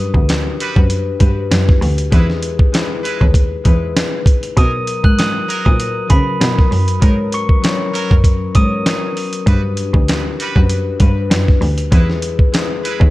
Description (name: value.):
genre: hip hop, boom-bap hip-hop.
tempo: 98 BPM.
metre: 4/4.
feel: swing 55% on 16ths.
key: unclear.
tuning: A4 = 440 Hz.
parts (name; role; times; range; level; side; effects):
concert harp; accompaniment; 0.0-13.1 s; F#3 to B4; -22 LUFS; left 6 dB; cassette tape, high-pass filter, low-pass filter.
warm cello; bass; 0.0-13.1 s; D2 to C#3; -18 LUFS; equal; none.
dusty soul sampler-style drum kit; drums; 0.1-13.1 s; handclaps, hi-hat, kick drum, snare drum; -14 LUFS; equal; none.
muted trumpet section; stabs; 0.6-13.0 s; F#3 to B4; -28 LUFS; right 4 dB; high-pass filter, low-pass filter, tape echo.
glockenspiel with soft plastic mallets; melody; 4.6-8.7 s; B5 to F#7; -23 LUFS; right 3 dB; high-pass filter, low-pass filter, tape echo.
room: little or no reverb.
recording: dark, warm production.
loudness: -12 LUFS.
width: side -18 dB against mid.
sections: 0.0-13.1 A section.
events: none.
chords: 0.0 Gmaj7; 2.1 Emaj7; 4.6 G#m11; 9.5 Gmaj7; 11.9 Emaj7.